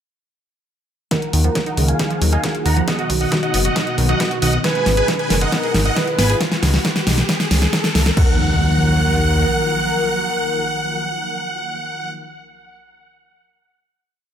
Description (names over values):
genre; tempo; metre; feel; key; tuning
uplifting trance; 136 BPM; 4/4; straight; Eb minor; A4 = 440 Hz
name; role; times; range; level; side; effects
big supersaw lead; melody; 1.1-12.1 s; Cb5 to Bb5; -23 LUFS; right 1 dB; sidechain pumping, low-pass filter, dub echo
warm velvety synth lead; second line; 1.1-12.1 s; F#4 to Cb5; -24 LUFS; equal; chorus, dub echo
analog string pad; sustained chords; 1.1-12.1 s; B2 to Bb4; -26 LUFS; left 1 dB; ensemble chorus, sidechain pumping
analog pluck; arpeggios; 1.1-8.4 s; Eb3 to Ab4; -26 LUFS; right 3 dB; chorus, sidechain pumping, dub echo
big-room dance drum kit; drums; 1.1-8.3 s; crash cymbal, hi-hat, snare drum; -20 LUFS; equal; studio reverb, sidechain pumping on hats, sidechain pumping on cymbals
electronic kick drum; drums; 1.1-8.3 s; none; -22 LUFS; equal; high-pass filter on kick, studio reverb, high-pass filter on room
riser and impact; sound effects; 3.5-12.2 s; none; -27 LUFS; equal; none
fat analog bass; bass; 1.3-9.5 s; F#1 to Eb2; -18 LUFS; equal; sidechain pumping
room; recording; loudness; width
light reverb; none; -15 LUFS; side -9 dB against mid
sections
1.1-8.2 build; 8.2-11.7 final chord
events
build-up 1.1-8.2; drum fill 1.1-8.2; filter sweep on supersaw synth 1.1-6.4; riser 3.5-8.2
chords
1.1 Ebmadd9; 2.9 B; 4.6 Abm; 6.4 Bsus2; 8.2 Ebmadd9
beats
| 1.11 1.55 2.00 2.44 | 2.88 3.32 3.76 4.20 | 4.64 5.08 5.52 5.96 | 6.41 6.85 7.29 7.73 | 8.17 8.61 9.05 9.49 | 9.94 10.38 10.82 11.26